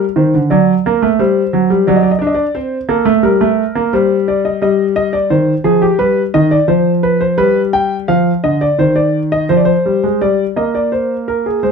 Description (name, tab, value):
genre	classical, baroque-style two-part invention for grand piano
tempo	86 BPM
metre	4/4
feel	straight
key	C minor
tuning	A4 = 440 Hz
part	warm concert grand piano	solo	0.0-11.7 s	D3 to G5	-11 LUFS	equal	none
room	moderate studio reverb, RT60 0.6 s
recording	dark, warm production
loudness	-11 LUFS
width	side -5 dB against mid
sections	0.0-10.2 A section; 10.2-11.7 B section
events	none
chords	0.0 N.C.; 0.5 D/F#; 1.9 D7/F#; 3.2 Gm; 4.6 Cm/G; 6.0 G; 7.4 G7; 8.8 Cm/Eb; 10.2 C5/G